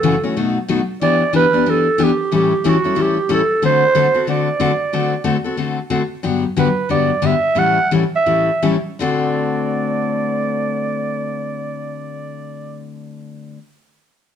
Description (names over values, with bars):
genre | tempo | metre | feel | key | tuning
jazz | 156-184 BPM | 4/4 | swing 61% on 8ths | D mixolydian | A4 = 439 Hz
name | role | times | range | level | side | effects
growling clarinet | melody | 0.0-12.8 s | F#4 to F#5 | -18 LUFS | right 4 dB | plate reverb
picked steel-string acoustic guitar | accompaniment | 0.0-13.6 s | F#2 to A4 | -18 LUFS | left 4 dB | none
room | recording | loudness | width
moderate studio reverb, RT60 0.8 s | dark, warm production | -15 LUFS | side -8 dB against mid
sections
0.0-6.2 A section; 6.2-9.0 B section; 9.0-12.1 C section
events
slowing down 6.2-9.0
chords
0.4 B7; 1.0 Em7; 2.3 A7; 3.6 D7; 6.2 Gmaj7; 7.6 A7; 9.0 D7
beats
0.03 0.35 0.68 | 1.01 1.33 1.66 1.99 | 2.31 2.64 2.97 3.29 | 3.62 3.94 4.27 4.59 | 4.92 5.25 5.57 5.90 | 6.22 6.55 6.88 7.21 | 7.55 7.90 8.26 8.62 | 9.00 9.38 9.77 10.15 | 10.54 10.92 11.31 11.69